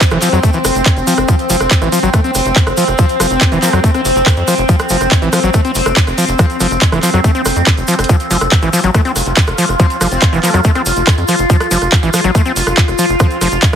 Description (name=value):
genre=psychedelic trance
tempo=141 BPM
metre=4/4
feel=straight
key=F major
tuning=A4 = 440 Hz
part: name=overtone-sweeping drone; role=sustained chords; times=0.0-13.8 s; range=C4 to F4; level=-17 LUFS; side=equal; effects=chorus, built-in reverb, phaser, sidechain pumping
part: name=drum and bass drum kit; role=drums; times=0.0-13.8 s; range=handclaps, hi-hat, rim click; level=-17 LUFS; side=right 1 dB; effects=none
part: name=electronic kick drum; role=drums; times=0.0-13.7 s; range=none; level=-11 LUFS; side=equal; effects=none
part: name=egg shaker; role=percussion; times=0.0-13.8 s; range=none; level=-24 LUFS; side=right 2 dB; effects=none
part: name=overdriven acid bass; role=riff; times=0.1-13.8 s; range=E3 to C4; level=-17 LUFS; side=left 2 dB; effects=distortion, auto-pan, sidechain pumping, tape echo
part: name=tight sequencer bass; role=bass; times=0.1-13.8 s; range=F1 to F2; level=-18 LUFS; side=equal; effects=none
part: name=metallic wobble bass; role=second line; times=3.0-3.7, 6.4-6.6, 9.8-10.5, 13.2-13.4 s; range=C4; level=-25 LUFS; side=left 3 dB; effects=wide subtle chorus, sidechain pumping, high-pass filter, dub echo
room=light reverb, digital ambience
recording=heavily compressed radio sound, multiband compression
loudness=-10 LUFS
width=side -8 dB against mid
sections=0.0-13.8 A section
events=drum fill 7.9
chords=0.0 F5